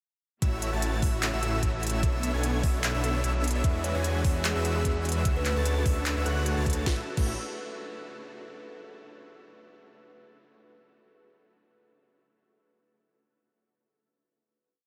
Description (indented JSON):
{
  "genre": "future bass",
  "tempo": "149 BPM",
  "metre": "4/4",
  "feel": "swing 54% on 16ths, half-time",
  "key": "A major",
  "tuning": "A4 = 440 Hz",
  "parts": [
    { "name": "clear symphonic string section", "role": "sustained chords", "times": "0.4-7.0 s", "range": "C#3 to C#5", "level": "-45 LUFS", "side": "equal", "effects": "none" },
    { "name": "airy dreamy lead", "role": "arpeggios", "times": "0.4-7.3 s", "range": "E6 to A6", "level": "-42 LUFS", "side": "equal", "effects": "chorus, sidechain pumping, diffuse ambient delay" },
    { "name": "supersaw chords", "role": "riff", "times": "0.4-7.3 s", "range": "G#3 to A5", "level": "-36 LUFS", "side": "equal", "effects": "lush chorus, sidechain pumping, diffuse ambient delay" },
    { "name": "detuned saw bass", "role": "bass", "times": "0.4-7.4 s", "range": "A1 to E2", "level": "-32 LUFS", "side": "equal", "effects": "chorus, sidechain pumping" },
    { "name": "electronic kick drum", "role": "drums", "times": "0.4-7.2 s", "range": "none", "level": "-29 LUFS", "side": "equal", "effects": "none" },
    { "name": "trap drum kit", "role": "drums", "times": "0.4-7.2 s", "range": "crash cymbal, handclaps, hi-hat, snare drum", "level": "-37 LUFS", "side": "equal", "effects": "none" },
    { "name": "kalimba", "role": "melody", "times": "3.6-6.4 s", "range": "G#4 to E5", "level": "-40 LUFS", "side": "equal", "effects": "sidechain pumping, delay" }
  ],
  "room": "moderate huge ambient reverb, RT60 8.0 s",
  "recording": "dreamy mix soaked in reverb",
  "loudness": "-28 LUFS",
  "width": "mono",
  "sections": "0.4-6.9 drop; 6.9-8.5 final chord",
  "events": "drop 0.4-6.9",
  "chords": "0.4 A6; 2.0 Bm11; 3.6 E9; 5.3 Dmaj9; 6.9 A6",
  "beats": "| 0.42 0.82 1.23 1.63 | 2.03 2.43 2.84 3.24 | 3.64 4.04 4.45 4.85 | 5.25 5.66 6.06 6.46 | 6.86 7.27"
}